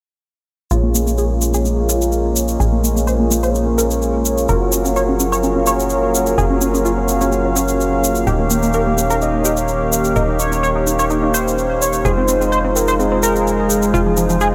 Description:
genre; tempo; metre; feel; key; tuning
progressive house; 127 BPM; 4/4; straight; Bb minor; A4 = 436 Hz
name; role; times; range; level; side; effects
warm analog pad; sustained chords; 0.7-14.5 s; Eb3 to F5; -24 LUFS; equal; chorus
tight sequenced synth; arpeggios; 0.7-14.5 s; F3 to Db5; -23 LUFS; equal; chorus, digital delay
soft supersaw; stabs; 0.7-14.5 s; Ab3 to Db5; -22 LUFS; equal; low-pass filter, digital delay
tight sequencer bass; bass; 0.7-14.5 s; Eb1 to Bb1; -23 LUFS; equal; none
tube shaker; percussion; 0.7-14.5 s; none; -25 LUFS; equal; none
warm velvety synth lead; melody; 9.2-14.5 s; Ab4 to F5; -24 LUFS; equal; chorus, digital delay
room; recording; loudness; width
moderate huge ambient reverb, RT60 7.8 s; none; -16 LUFS; mono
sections
0.7-14.5 A section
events
filter sweep on synth arpeggio sound 0.7-14.5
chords
0.7 Bbm7; 4.5 Gbmaj7; 8.3 Eb7; 12.0 Fm7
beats
| 0.71 1.18 1.66 2.13 | 2.60 3.07 3.54 4.02 | 4.49 4.96 5.43 5.91 | 6.38 6.85 7.32 7.80 | 8.27 8.74 9.21 9.69 | 10.16 10.63 11.10 11.58 | 12.05 12.52 12.99 13.47 | 13.94 14.41

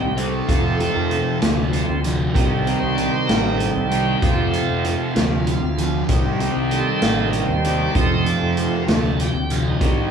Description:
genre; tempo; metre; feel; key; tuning
psychedelic rock; 64 BPM (dotted quarters); 6/8; straight; unclear; A4 = 435 Hz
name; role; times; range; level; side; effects
bright tonewheel organ; sustained chords; 0.0-10.1 s; Eb3 to Eb5; -23 LUFS; right 3 dB; slow rotary speaker, overdrive
fuzz fingered electric bass; bass; 0.0-10.1 s; A1 to F2; -24 LUFS; equal; overdrive
thick fuzz guitar; riff; 0.2-10.1 s; F2 to C4; -22 LUFS; left 1 dB; distortion, phaser
vintage drum kit; drums; 0.2-10.0 s; hi-hat, kick drum, snare drum; -23 LUFS; equal; none
room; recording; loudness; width
wet large studio reverb, RT60 1.2 s; band playing live in one room, small room ambience; -17 LUFS; side -7 dB against mid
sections
0.0-10.1 A section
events
tonewheel organ solo 0.0-10.1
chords
0.5 F; 2.4 Cm; 4.2 F; 6.1 Cm; 8.0 F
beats
| 0.48 1.42 | 2.35 3.29 | 4.22 5.16 | 6.09 7.02 | 7.95 8.88 | 9.81

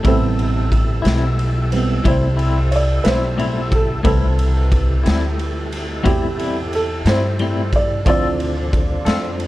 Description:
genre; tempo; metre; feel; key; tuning
slow blues; 60 BPM (dotted quarters); 12/8; straight; A minor; A4 = 440 Hz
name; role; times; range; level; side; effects
clean electric guitar; accompaniment; 0.0-9.3 s; A2 to A4; -23 LUFS; left 4 dB; tremolo
warm upright piano; accompaniment; 0.0-9.4 s; C3 to D5; -23 LUFS; right 3 dB; none
tonewheel organ; sustained chords; 0.0-9.5 s; F3 to G#5; -27 LUFS; equal; chorus vibrato, slow rotary speaker
upright bass; bass; 0.0-9.5 s; A1 to G2; -19 LUFS; equal; none
raw garage drum kit; drums; 0.0-9.5 s; kick drum, ride cymbal, snare drum; -21 LUFS; equal; none
room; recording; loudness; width
light reverb; dark, warm production; -15 LUFS; side -16 dB against mid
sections
0.0-9.5 A section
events
upright piano solo 0.0-9.5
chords
0.0 Am7; 8.1 Dm7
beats
| 0.05 1.05 2.06 3.06 | 4.06 5.06 6.06 7.06 | 8.07 9.07

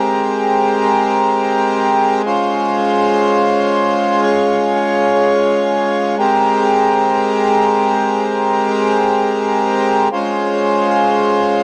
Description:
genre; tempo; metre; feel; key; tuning
hip hop; free time; none; none; Ab major; A4 = 442 Hz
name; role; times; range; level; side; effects
hand-pumped harmonium; solo; 0.0-11.6 s; Ab3 to Db5; -15 LUFS; equal; none
room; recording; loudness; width
light reverb, small room ambience; dark, warm production; -15 LUFS; mono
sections
0.0-11.6 A section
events
none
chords
0.0 Abmaj9; 2.3 Dbmaj7; 6.2 Abmaj9; 10.1 Dbmaj7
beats
free time

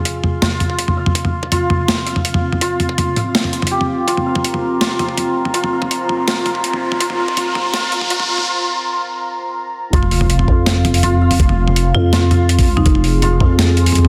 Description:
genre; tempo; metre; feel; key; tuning
half-time drum and bass; 164 BPM; 4/4; half-time; F minor; A4 = 440 Hz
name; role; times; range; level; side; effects
dark analog pad; sustained chords; 0.0-14.1 s; C4 to Bb5; -25 LUFS; equal; chorus, sidechain pumping
santur; arpeggios; 0.0-14.1 s; F4 to F5; -24 LUFS; equal; low-pass filter, digital delay
boom bap sampler-style drum kit; drums; 0.1-14.1 s; hi-hat, snare drum, toms; -20 LUFS; equal; none
electronic kick drum; drums; 0.7-13.5 s; none; -18 LUFS; equal; high-pass filter on kick
riser and sub drop; sound effects; 5.9-11.4 s; none; -27 LUFS; equal; none
growling 808-style bass; bass; 9.9-14.1 s; F1 to F2; -16 LUFS; equal; tube saturation
marimba with hard mallets; melody; 11.9-12.9 s; Eb4 to F4; -24 LUFS; equal; digital delay
room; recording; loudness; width
moderate lush hall reverb, RT60 2.0 s, digital ambience; dense, heavily limited modern master, high-pass filter; -16 LUFS; mono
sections
0.0-9.9 A section; 9.9-14.1 B section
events
build-up 0.0-9.9; filter sweep 0.0-9.9; riser 5.9-8.5; break 8.5-9.9; drop 9.9-14.1; impact 9.9-11.4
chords
0.0 F5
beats
0.05 0.42 0.79 | 1.15 1.52 1.88 2.25 | 2.62 2.98 3.35 3.71 | 4.08 4.44 4.81 5.18 | 5.54 5.91 6.27 6.64 | 7.00 7.37 7.74 8.10 | 8.47 8.83 9.20 9.57 | 9.93 10.30 10.66 11.03 | 11.39 11.76 12.13 12.49 | 12.86 13.22 13.59 13.96

